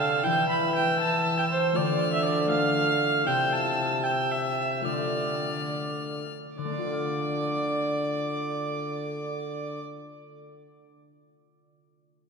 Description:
classical, renaissance-style consort dance; 66-80 BPM (dotted quarters); 6/8; straight; D dorian; A4 = 441 Hz
warm violin; melody; 0.0-9.8 s; D6 to F6; -34 LUFS; left 4 dB
warm viola; second line; 0.0-9.8 s; C5 to B5; -28 LUFS; right 3 dB
concert harp; accompaniment; 0.0-10.5 s; C3 to F5; -32 LUFS; left 4 dB
warm trombone; bass; 0.0-9.8 s; C3 to E3; -31 LUFS; equal
wet church reverb, RT60 3.5 s; minimal, uncompressed stereo recording; -24 LUFS; side -5 dB against mid
0.0-6.6 A section; 6.6-10.2 B section
slowing down 2.5-6.6
0.2 E5; 1.8 Dm; 3.3 C; 4.9 Dm

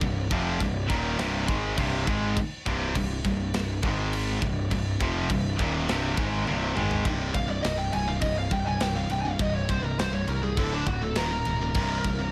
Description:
heavy metal; 102 BPM; 4/4; straight; C minor; A4 = 439 Hz
high-gain distorted guitar; riff; 0.0-12.3 s; C2 to Ab3; -33 LUFS; equal; distortion
high-gain distorted guitar; riff; 0.0-7.0 s; C2 to Ab3; -32 LUFS; equal; distortion
fuzz picked electric bass; bass; 0.0-12.3 s; C1 to C2; -33 LUFS; equal; overdrive
tight metal drum kit; drums; 0.0-12.2 s; crash cymbal, kick drum, snare drum, toms; -34 LUFS; equal
bluesy overdriven lead guitar; melody; 7.3-12.3 s; D4 to Ab5; -33 LUFS; equal; distortion, digital delay
light reverb; -27 LUFS; mono
0.0-7.0 A section; 7.0-12.3 B section
half time 0.0-7.0; drum fill 6.5-7.0; lead electric guitar solo 7.0-12.3
0.0 Cm; 3.8 Ab5; 4.4 Cm; 7.0 C5; 10.6 D5; 11.2 Eb5; 11.8 C5

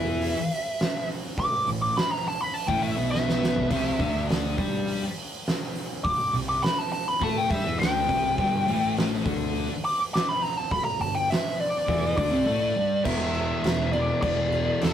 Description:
stoner and doom metal; 103 BPM; 4/4; straight; A4 = 441 Hz
fuzz lead guitar; melody; 0.0-14.9 s; A4 to D6; -26 LUFS; equal; wah, distortion
thick fuzz guitar; riff; 0.0-14.9 s; E2 to A4; -31 LUFS; left 4 dB; distortion
thick fuzz guitar; riff; 0.0-14.9 s; E2 to A4; -33 LUFS; right 3 dB; distortion
thick fuzz guitar; riff; 0.0-14.9 s; E2 to A4; -34 LUFS; equal; distortion
fuzz fingered electric bass; bass; 0.0-14.9 s; E1 to A2; -32 LUFS; equal; overdrive
oversized low-tuned drum kit; drums; 0.2-14.9 s; crash cymbal, hi-hat, kick drum, snare drum, toms; -29 LUFS; right 1 dB
moderate studio reverb, RT60 0.6 s; rough rehearsal-room recording; -23 LUFS; side -10 dB against mid
0.0-13.1 A section; 13.1-14.9 B section
lead electric guitar solo 0.0-13.1; drum fill 3.1-3.7
0.0 A5; 3.7 C5; 8.4 G5; 13.1 E5

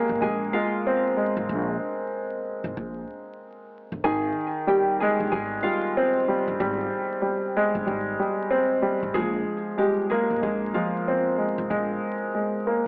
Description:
hip hop, boom-bap hip-hop; 94 BPM; 4/4; swing 60% on 16ths; A4 = 439 Hz
nylon-string guitar; melody; 0.0-11.7 s; F3 to Ab5; -30 LUFS; equal; high-pass filter, low-pass filter, tape echo
warm upright piano; accompaniment; 0.0-12.9 s; Eb3 to C4; -27 LUFS; equal; high-pass filter, low-pass filter
upright bass; bass; 0.1-12.0 s; G1 to Bb1; -36 LUFS; equal
light reverb; dry, gritty hardware recording, transformer saturation, vinyl crackle, AM radio sound; -25 LUFS; mono
0.0-9.1 A section; 9.1-12.9 B section
break 1.5-4.0
0.0 Bbsus2; 4.0 Abmaj7; 9.1 Bbsus2

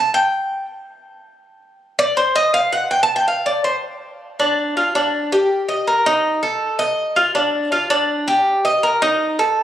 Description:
latin; 162 BPM; 4/4; straight; A4 = 440 Hz
Cuban tres; solo; 0.0-9.6 s; D4 to A5; -16 LUFS; equal
moderate plate reverb, RT60 3.6 s; recorded on a phone in the room, club reverb, compression; -16 LUFS; side -11 dB against mid
0.0-4.4 A section; 4.4-9.6 B section
Cuban tres solo 0.0-4.4

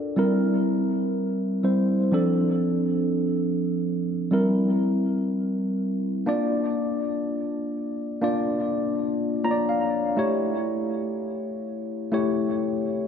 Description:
pop; 123 BPM; 4/4; swing 55% on 16ths; A4 = 440 Hz
tine electric piano; solo; 0.0-13.1 s; F3 to Bb5; -22 LUFS; equal; wide subtle chorus, diffuse ambient delay
wet plate reverb, RT60 3.3 s; dreamy mix soaked in reverb; -22 LUFS; side -7 dB against mid
0.0-6.3 A section; 6.3-13.1 B section
tine electric piano fill 9.2-10.2
0.2 C7; 2.1 Dm7; 4.3 C7; 6.3 Bb; 10.2 A7

